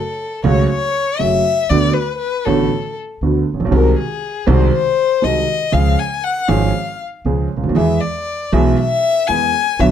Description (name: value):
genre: tango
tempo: 119 BPM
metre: 4/4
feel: rubato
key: unclear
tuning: A4 = 442 Hz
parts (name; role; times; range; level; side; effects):
- warm violin; second line; 0.0-9.9 s; G#4 to G#5; -18 LUFS; left 6 dB; none
- warm grand piano; accompaniment; 0.4-9.9 s; G#1 to G#4; -17 LUFS; right 4 dB; none
- upright bass; bass; 0.4-9.9 s; F#1 to E2; -18 LUFS; equal; none
room: moderate studio reverb, RT60 0.5 s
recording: dark, warm production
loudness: -14 LUFS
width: side -9 dB against mid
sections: 0.0-9.9 A section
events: violin solo 0.0-9.9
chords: 0.0 F#m; 1.7 D6; 3.7 G#7/B#; 5.7 C#; 7.8 E